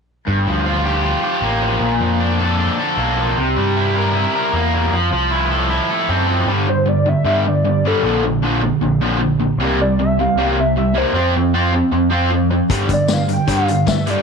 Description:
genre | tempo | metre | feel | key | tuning
indie rock | 154 BPM | 4/4 | straight | unclear | A4 = 440 Hz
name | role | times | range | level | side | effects
cranked stack guitar | riff | 0.3-14.2 s | G2 to Bb4 | -16 LUFS | equal | overdrive
overdriven picked electric bass | bass | 0.3-14.1 s | G1 to G2 | -21 LUFS | equal | none
hollow square lead | melody | 6.7-14.2 s | A4 to G5 | -20 LUFS | left 1 dB | chorus, slapback echo
vintage drum kit | drums | 12.7-14.2 s | hi-hat, kick drum, snare drum, tambourine | -20 LUFS | left 5 dB | none
room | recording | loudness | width
light reverb, small room reverb | 1960s-style stereo, faint mains hum | -14 LUFS | side -5 dB against mid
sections
0.3-6.5 A section; 6.5-14.2 B section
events
none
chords
0.3 Gm7; 1.8 Bbmaj7; 3.4 C7; 4.9 Fmaj7; 6.5 G5; 8.0 Bb; 9.6 C5; 11.2 F5; 12.7 G5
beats
| 0.28 0.67 1.06 1.45 | 1.83 2.22 2.61 3.00 | 3.38 3.77 4.16 4.55 | 4.93 5.32 5.71 6.10 | 6.49 6.87 7.26 7.65 | 8.04 8.43 8.82 9.21 | 9.60 9.98 10.37 10.76 | 11.15 11.54 11.93 12.32 | 12.71 13.10 13.49 13.88

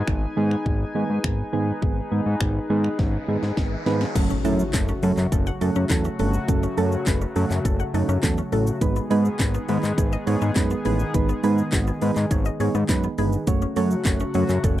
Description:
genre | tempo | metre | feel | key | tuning
dance-pop | 103 BPM | 4/4 | straight | F# dorian | A4 = 440 Hz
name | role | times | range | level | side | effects
chorused pulse-width pad | sustained chords | 0.0-14.8 s | C#3 to G#5 | -30 LUFS | left 2 dB | sidechain pumping
fat analog bass | bass | 0.0-14.8 s | F#1 to G#2 | -23 LUFS | left 1 dB | sidechain pumping
soft electric-piano-like synth keys | accompaniment | 0.1-14.8 s | D#3 to C#5 | -26 LUFS | right 5 dB | chorus, sidechain pumping
house drum kit | drums | 0.1-14.8 s | crash cymbal, finger snaps, handclaps, hi-hat, kick drum, shaker, snare drum | -24 LUFS | left 1 dB | overdrive
riser and impact | sound effects | 2.9-6.5 s | none | -33 LUFS | left 1 dB | none
mallet-like synth pluck | arpeggios | 4.2-14.8 s | D#3 to F#5 | -32 LUFS | left 2 dB | chorus, phaser, sidechain pumping, tape echo
room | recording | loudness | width
light reverb | dry, close 1970s-style studio recording | -20 LUFS | side -14 dB against mid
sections
0.0-4.2 A section; 4.2-14.8 B section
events
riser 2.9-4.2; drum fill 3.0-4.2; impact 4.2-6.5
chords
0.0 G#m; 4.2 F#m; 8.8 G#m; 13.5 F#m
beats
0.08 0.66 1.24 | 1.82 2.41 2.99 3.57 | 4.15 4.74 5.32 5.90 | 6.48 7.07 7.65 8.23 | 8.81 9.40 9.98 10.56 | 11.14 11.73 12.31 12.89 | 13.47 14.06 14.64

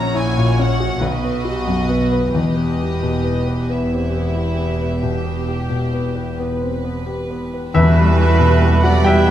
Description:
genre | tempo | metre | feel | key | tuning
classical, romantic movement for piano and orchestra | 44-49 BPM (dotted quarters) | 12/8 | rubato | E minor | A4 = 438 Hz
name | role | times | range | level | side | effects
clear grand piano | melody | 0.0-9.3 s | A#1 to G5 | -19 LUFS | left 2 dB | none
warm symphonic violin section | melody | 0.0-9.3 s | D#5 to A#5 | -30 LUFS | left 2 dB | none
warm symphonic violin section | second line | 0.0-9.3 s | E4 to E5 | -29 LUFS | equal | none
dark symphonic viola section | accompaniment | 0.0-9.3 s | F#4 to C#5 | -28 LUFS | right 1 dB | none
warm symphonic cello section | bass | 0.0-9.3 s | E2 to G3 | -24 LUFS | right 2 dB | none
warm symphonic double bass section | bass | 0.0-9.3 s | E1 to E2 | -21 LUFS | right 2 dB | none
cymbal swell and tam-tam | percussion | 2.4-9.3 s | none | -32 LUFS | equal | none
clear clarinet | second line | 7.8-9.3 s | E4 to F#4 | -29 LUFS | left 2 dB | none
silver concert flute | second line | 7.8-9.3 s | B5 | -26 LUFS | right 2 dB | none
warm oboe | second line | 7.8-9.3 s | B4 | -27 LUFS | right 5 dB | none
clear bassoon | accompaniment | 7.8-9.3 s | G3 to A3 | -27 LUFS | right 2 dB | none
mellow French horn section | sustained chords | 7.8-9.3 s | G3 to B3 | -25 LUFS | left 2 dB | none
timpani | percussion | 7.8-9.0 s | E2 | -22 LUFS | equal | none
room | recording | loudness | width
moderate recital hall reverb, RT60 1.8 s | close, detailed microphones | -15 LUFS | side -11 dB against mid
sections
0.0-7.8 A section; 7.8-9.3 A section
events
band accent 7.8-8.6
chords
0.0 F#7/A#; 1.0 B; 2.3 Em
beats
1.03 | 2.34 3.69 5.04 6.40 | 7.75 9.04

